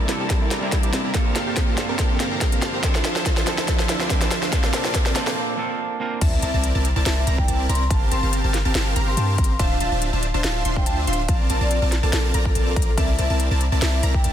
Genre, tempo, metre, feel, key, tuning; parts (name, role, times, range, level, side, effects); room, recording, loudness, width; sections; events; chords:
future bass; 142 BPM; 4/4; swing 53% on 16ths, half-time; A4 = 441 Hz
semi-hollow electric guitar; accompaniment; 0.0-6.2 s; F3 to Bb4; -27 LUFS; right 4 dB; sidechain pumping, ping-pong delay
dark studio string section; sustained chords; 0.0-5.4 s; D2 to D5; -35 LUFS; left 3 dB
wide unison pluck; arpeggios; 0.0-5.3 s; C4 to C5; -33 LUFS; right 1 dB
dense compressed supersaw; riff; 0.0-14.3 s; C4 to C6; -26 LUFS; equal; sidechain pumping
trap drum kit; drums; 0.1-14.3 s; crash cymbal, hi-hat, snare drum; -26 LUFS; left 1 dB; studio reverb
electronic kick drum; drums; 0.3-14.2 s; -21 LUFS; equal; studio reverb
vibraphone with medium hard mallets; melody; 6.2-14.3 s; A4 to C6; -29 LUFS; left 1 dB; sidechain pumping, digital delay
wide unison pluck; arpeggios; 6.2-14.3 s; A5 to C6; -32 LUFS; right 1 dB; sidechain pumping, ping-pong delay
long sustained 808-style bass; bass; 6.2-14.3 s; D1 to G2; -22 LUFS; equal; sidechain pumping
sub drop; sound effects; 6.2-7.9 s; -31 LUFS; left 1 dB
light reverb, digital ambience; dense, heavily limited modern master; -18 LUFS; side -10 dB against mid
0.0-6.2 A section; 6.2-14.3 B section
build-up 0.0-6.2; drum fill 0.0-5.4; break 5.4-6.2; drop 6.2-14.3; impact 6.2-7.9
0.0 C13; 1.1 Gm11; 2.8 Dm9; 4.5 Bbmaj9; 6.2 C13; 7.9 Gm11; 9.6 Dm9; 11.3 Bbmaj9; 13.0 C13